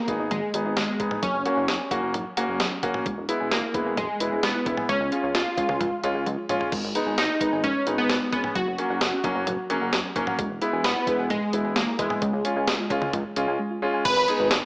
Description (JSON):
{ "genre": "synth-pop", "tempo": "131 BPM", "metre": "4/4", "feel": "straight", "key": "G# minor", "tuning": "A4 = 441 Hz", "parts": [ { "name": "funky polysynth comp", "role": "melody", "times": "0.0-14.5 s", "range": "G#3 to B4", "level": "-25 LUFS", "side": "equal", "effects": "chorus" }, { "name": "soft round pluck", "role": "arpeggios", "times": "0.0-14.0 s", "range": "D#3 to G#5", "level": "-33 LUFS", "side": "equal", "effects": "chorus, tape echo" }, { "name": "clear concert grand piano", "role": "accompaniment", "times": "0.1-14.5 s", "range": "F#3 to G#4", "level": "-28 LUFS", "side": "equal", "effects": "none" }, { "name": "chorused synth bass", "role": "bass", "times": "0.1-14.6 s", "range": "E1 to C#2", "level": "-32 LUFS", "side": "equal", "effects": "none" }, { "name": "clean 12-bit digital drum machine", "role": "drums", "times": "0.1-14.6 s", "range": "crash cymbal, hi-hat, kick drum, snare drum, toms", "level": "-27 LUFS", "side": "equal", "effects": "gated reverb" } ], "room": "moderate plate reverb, RT60 1.6 s", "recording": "small speaker sound", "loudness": "-22 LUFS", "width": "side -29 dB against mid", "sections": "0.0-14.1 A section", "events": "drum fill 6.3-6.7", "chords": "0.0 G#m; 1.2 F#; 3.1 E; 4.9 C#; 6.7 G#m; 8.6 F#; 10.4 E; 12.2 C#; 14.1 G#m", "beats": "0.31 0.77 | 1.23 1.69 2.14 2.60 | 3.06 3.52 3.98 4.43 | 4.89 5.35 5.81 6.26 | 6.72 7.18 7.64 8.10 | 8.55 9.01 9.47 9.93 | 10.39 10.85 11.30 11.76 | 12.22 12.68 13.13 13.59 | 14.05 14.51" }